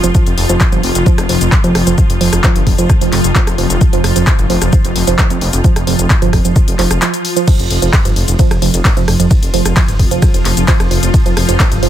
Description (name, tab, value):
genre	driving peak-time techno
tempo	131 BPM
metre	4/4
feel	straight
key	unclear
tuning	A4 = 441 Hz
part	woody wave-folded pluck	riff	0.0-11.9 s	F3	-18 LUFS	right 6 dB	chorus, sidechain pumping, tape echo
part	detuned saw bass	bass	0.0-11.9 s	F1 to G1	-16 LUFS	equal	tube saturation, sidechain pumping
part	swarming drone	drone	0.0-11.9 s	F3 to F4	-20 LUFS	left 1 dB	built-in reverb, sidechain pumping
part	punchy analog drum machine	drums	0.0-11.9 s	crash cymbal, handclaps, hi-hat, ride cymbal, rim click, shaker	-18 LUFS	left 2 dB	sidechain pumping on hats, sidechain pumping on cymbals, sidechain pumping on perc
part	electronic kick drum	drums	0.1-11.7 s	none	-12 LUFS	equal	none
room	little or no reverb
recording	dense, heavily limited modern master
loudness	-9 LUFS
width	side -11 dB against mid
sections	0.0-11.9 A section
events	break 7.0-7.5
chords	none